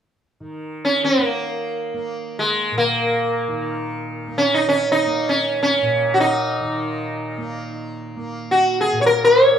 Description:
indian classical, Hindustani; free time; A4 = 440 Hz
tanpura; drone; 0.4-9.6 s; Bb2 to Bb3; -28 LUFS; equal
sitar; melody; 0.8-9.6 s; Ab3 to Db5; -17 LUFS; equal
moderate large studio reverb, RT60 0.9 s; band playing live in one room; -17 LUFS; side -8 dB against mid
0.4-9.6 A section

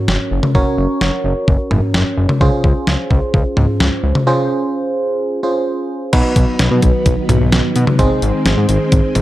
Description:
synth-pop; 129 BPM; 4/4; straight; Db major; A4 = 440 Hz
FM electric piano; accompaniment; 0.0-9.2 s; Cb4 to Db5; -18 LUFS; right 2 dB; chorus
fat analog bass; bass; 0.1-9.2 s; Gb1 to Cb3; -16 LUFS; equal
detuned 8-bit digital drum machine; drums; 0.1-9.2 s; crash cymbal, hi-hat, kick drum, snare drum, toms; -16 LUFS; equal
ensemble organ-string; sustained chords; 6.1-9.2 s; Eb3 to C4; -20 LUFS; equal; ensemble chorus
moderate digital room reverb, RT60 1.1 s, digital ambience; dark, warm production; -13 LUFS; side -15 dB against mid
0.0-6.1 A section; 6.1-9.2 B section
break 4.3-6.1
0.0 Gb; 2.4 Dbmaj7; 6.1 Cb; 8.0 Ab

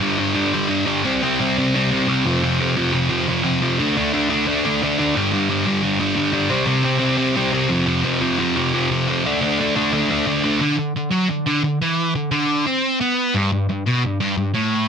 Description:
punk; 176 BPM; 4/4; straight; A4 = 440 Hz
sludgy distorted guitar; solo; 0.0-14.9 s; F2 to D4; -17 LUFS; equal; overdrive
moderate small room ambience, RT60 0.5 s; dense, heavily limited modern master; -17 LUFS; side -7 dB against mid
0.0-10.6 A section; 10.6-14.9 B section
0.0 G5; 1.0 C5; 2.2 F5; 3.8 D5; 5.1 G5; 6.5 C5; 7.7 F5; 9.2 D5; 10.6 N.C.; 13.3 G5

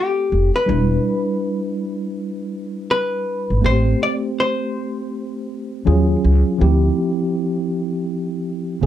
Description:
hip hop, jazz-hop; 81 BPM; 4/4; swing 61% on 16ths; A minor; A4 = 438 Hz
vintage hollow-body jazz guitar; melody; 0.0-8.8 s; G4 to D5; -21 LUFS; left 2 dB
mellow tine electric piano; accompaniment; 0.0-8.9 s; Db3 to C5; -21 LUFS; equal; medium stereo tremolo
upright bass; bass; 0.3-8.9 s; E1 to D#2; -16 LUFS; equal
moderate studio ambience, RT60 0.5 s; dark, warm production; -17 LUFS; side -11 dB against mid
0.0-8.9 A section
0.0 Am7; 0.7 Em7; 3.6 Am7; 5.9 D#m11; 6.6 Dm11

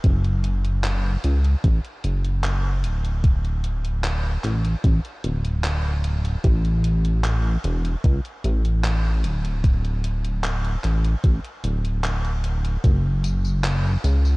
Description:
vaporwave; 75 BPM; 4/4; straight; D major; A4 = 440 Hz
chorused synth bass; bass; 0.0-14.4 s; D1 to C#2; -21 LUFS; equal
electronic kick drum; drums; 0.0-13.0 s; -18 LUFS; equal
gated 80s digital drum machine; drums; 0.0-14.4 s; handclaps, hi-hat, tambourine; -32 LUFS; equal; gated reverb
little or no reverb; cassette tape, faint mains hum; -20 LUFS; side -25 dB against mid
0.0-12.8 A section; 12.8-14.4 B section

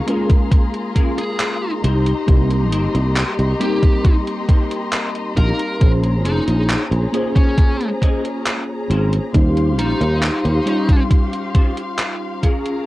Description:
vaporwave; 68 BPM; 4/4; straight; A4 = 440 Hz
mellow FM electric piano; accompaniment; 0.0-12.5 s; G3 to C6; -24 LUFS; left 1 dB; ensemble chorus, cassette tape, analog delay
warm studio string section; sustained chords; 0.0-12.9 s; Db4 to C6; -26 LUFS; left 2 dB; cassette tape
clean electric guitar; riff; 0.1-12.9 s; Db4 to G5; -26 LUFS; left 2 dB; ensemble chorus, cassette tape, analog delay
gated 80s digital drum machine; drums; 0.1-12.8 s; handclaps, hi-hat; -24 LUFS; equal; gated reverb, cassette tape
electronic kick drum; drums; 0.3-12.6 s; -14 LUFS; equal; cassette tape
high-gain lead guitar; melody; 1.2-11.0 s; Db4 to Bb4; -26 LUFS; equal; distortion, cassette tape, tape echo
sustaining fretless electric bass; bass; 1.8-10.6 s; F1 to Eb2; -17 LUFS; equal
light reverb; home recording on cassette; -15 LUFS; side -17 dB against mid
0.0-12.9 A section
clean electric guitar fill 4.0-5.8
0.0 Db6; 1.8 Cm7; 5.8 Bbm9; 9.3 Eb13

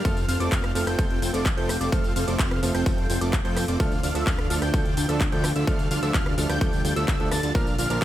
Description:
EDM, festival progressive house; 128 BPM; 4/4; straight; A4 = 440 Hz
warm baby grand piano; accompaniment; 0.0-8.0 s; F3 to Bb4; -32 LUFS; right 2 dB; sidechain pumping, dub echo
lush unison pad; sustained chords; 0.0-8.0 s; C3 to F4; -33 LUFS; equal; chorus, sidechain pumping
plucky unison lead; arpeggios; 0.0-8.0 s; D6 to A6; -33 LUFS; equal; sidechain pumping, dub echo
dense compressed supersaw; riff; 0.0-8.0 s; C4 to A5; -29 LUFS; right 1 dB; sidechain pumping, dub echo
fat analog bass; bass; 0.0-8.0 s; F1 to F2; -28 LUFS; equal; sidechain pumping
big-room dance drum kit; drums; 0.1-8.0 s; handclaps, hi-hat, rim click, tambourine; -32 LUFS; left 1 dB; overdrive, studio reverb
electronic kick drum; drums; 0.1-8.0 s; -25 LUFS; equal; overdrive, studio reverb
digital ambience; -21 LUFS; side -13 dB against mid
0.0-8.0 A section
0.0 F; 3.8 Dm

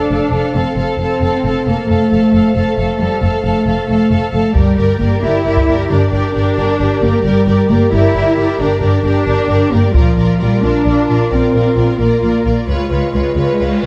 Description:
cinematic, epic orchestral film score; 89 BPM (dotted quarters); 12/8; straight; A4 = 439 Hz
warm symphonic violin section; melody; 0.0-13.9 s; C#5 to F5; -30 LUFS; equal
warm symphonic violin section; second line; 0.0-13.9 s; A4 to B4; -24 LUFS; equal
warm symphonic viola section; accompaniment; 0.0-13.9 s; F4 to A4; -25 LUFS; equal
dark French horn section; sustained chords; 0.0-13.9 s; F4 to C5; -24 LUFS; equal
dark symphonic cello section; bass; 0.0-13.9 s; F3 to E4; -18 LUFS; equal
dark symphonic double bass section; bass; 0.1-13.9 s; F1 to C#2; -19 LUFS; equal
solo taiko drums; drums; 4.6-5.8, 9.9-10.8 s; -17 LUFS; equal
cymbal swell; sound effects; 13.4-13.9 s; -33 LUFS; equal
light reverb; dark, warm production; -14 LUFS; mono
0.0-13.9 A section
0.0 F; 4.6 Gm; 9.9 Bb; 12.7 C#7

